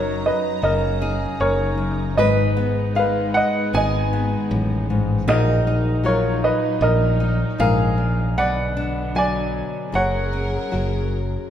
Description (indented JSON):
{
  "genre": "acoustic folk-pop ballad",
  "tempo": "77 BPM",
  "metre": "4/4",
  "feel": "straight",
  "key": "F# major",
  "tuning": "A4 = 440 Hz",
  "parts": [
    { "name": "clear concert grand piano", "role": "melody", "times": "0.0-11.1 s", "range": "A#4 to G#5", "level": "-22 LUFS", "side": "right 1 dB", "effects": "none" },
    { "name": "nylon-string guitar", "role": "accompaniment", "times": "0.0-11.5 s", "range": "F#2 to B4", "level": "-25 LUFS", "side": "left 4 dB", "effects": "none" },
    { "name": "warm studio string section", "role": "sustained chords", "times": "0.0-11.5 s", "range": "D3 to A#5", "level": "-30 LUFS", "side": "equal", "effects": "none" },
    { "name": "fingered electric bass", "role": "bass", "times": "0.0-11.4 s", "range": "F#1 to B1", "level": "-23 LUFS", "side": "equal", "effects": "none" },
    { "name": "picked swing-style acoustic guitar", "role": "arpeggios", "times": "1.0-8.7 s", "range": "D#4 to B4", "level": "-29 LUFS", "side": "right 2 dB", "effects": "none" }
  ],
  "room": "wet recital hall reverb, RT60 1.7 s",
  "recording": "recorded in a church or concert hall",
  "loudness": "-18 LUFS",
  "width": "side -10 dB against mid",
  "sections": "0.0-11.5 A section",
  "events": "none",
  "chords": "0.0 F#6; 2.2 G#m; 5.3 D#madd9/A#; 8.4 Bm; 9.9 F#add9"
}